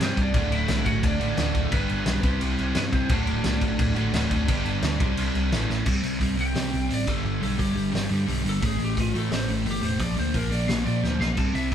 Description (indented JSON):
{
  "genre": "punk rock",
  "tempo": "174 BPM",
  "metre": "4/4",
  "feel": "straight",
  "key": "D mixolydian",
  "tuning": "A4 = 442 Hz",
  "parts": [
    { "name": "lightly driven lead guitar", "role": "melody", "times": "0.0-11.7 s", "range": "B3 to A5", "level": "-32 LUFS", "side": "equal", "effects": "none" },
    { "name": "sludgy distorted guitar", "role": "riff", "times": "0.0-11.7 s", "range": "D2 to C5", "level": "-26 LUFS", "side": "equal", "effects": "overdrive" },
    { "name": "overdriven picked electric bass", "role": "bass", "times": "0.0-11.7 s", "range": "D1 to Bb2", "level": "-28 LUFS", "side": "equal", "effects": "none" },
    { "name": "loose indie drum kit", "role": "drums", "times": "0.0-11.7 s", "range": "crash cymbal, hi-hat, kick drum, snare drum", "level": "-27 LUFS", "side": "equal", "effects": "none" }
  ],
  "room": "moderate small room reverb, RT60 0.5 s",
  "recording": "band playing live in one room",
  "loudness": "-22 LUFS",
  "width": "side -9 dB against mid",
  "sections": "0.0-5.9 A section; 5.9-11.7 B section",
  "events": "drum fill 5.7, 11.0-11.4; half time 5.9-11.7; lead electric guitar solo 5.9-11.7",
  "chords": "0.4 D; 1.7 G; 2.2 C; 3.1 D; 4.5 G; 5.0 C; 5.5 A; 5.9 C5; 7.1 G; 8.6 A5; 10.0 Bb",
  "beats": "0.01 | 0.35 0.69 1.04 1.38 | 1.73 2.07 2.42 2.76 | 3.11 3.45 3.79 4.14 | 4.48 4.83 5.17 5.52 | 5.86 6.21 6.55 6.90 | 7.24 7.59 7.93 8.28 | 8.62 8.96 9.31 9.65 | 10.00 10.34 10.69 11.03 | 11.38 11.72"
}